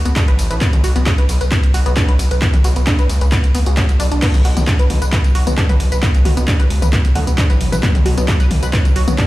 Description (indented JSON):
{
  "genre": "driving peak-time techno",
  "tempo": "133 BPM",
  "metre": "4/4",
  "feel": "straight",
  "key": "B minor",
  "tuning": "A4 = 440 Hz",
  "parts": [
    { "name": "gritty driven synth bass", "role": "bass", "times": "0.0-9.2 s", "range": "A1 to D2", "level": "-16 LUFS", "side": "equal", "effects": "sidechain pumping" },
    { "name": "tight sequenced synth", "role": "riff", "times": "0.1-9.2 s", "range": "B3 to B4", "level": "-23 LUFS", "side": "left 1 dB", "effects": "chorus, tube saturation, sidechain pumping, ping-pong delay" },
    { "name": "breakbeat sampler-style drum kit", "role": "drums", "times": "0.1-9.3 s", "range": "hi-hat, snare drum", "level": "-32 LUFS", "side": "equal", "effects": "none" },
    { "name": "punchy analog drum machine", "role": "drums", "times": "0.1-9.3 s", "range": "crash cymbal, handclaps, hi-hat, ride cymbal, tambourine, toms", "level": "-22 LUFS", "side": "equal", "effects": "overdrive" },
    { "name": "electronic kick drum", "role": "drums", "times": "0.2-9.3 s", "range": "none", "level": "-15 LUFS", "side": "equal", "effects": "none" },
    { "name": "swarming drone", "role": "drone", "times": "5.3-9.3 s", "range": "B2 to F#3", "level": "-27 LUFS", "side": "equal", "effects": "built-in reverb, phaser, sidechain pumping" }
  ],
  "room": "digital ambience",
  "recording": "played on a big sound system in a bare room, stone room reverb",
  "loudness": "-12 LUFS",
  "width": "side -17 dB against mid",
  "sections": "0.0-4.2 A section; 4.2-9.3 A section",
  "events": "drop 0.0-4.2, 4.2-9.3",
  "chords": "0.0 N.C.; 4.2 Bm"
}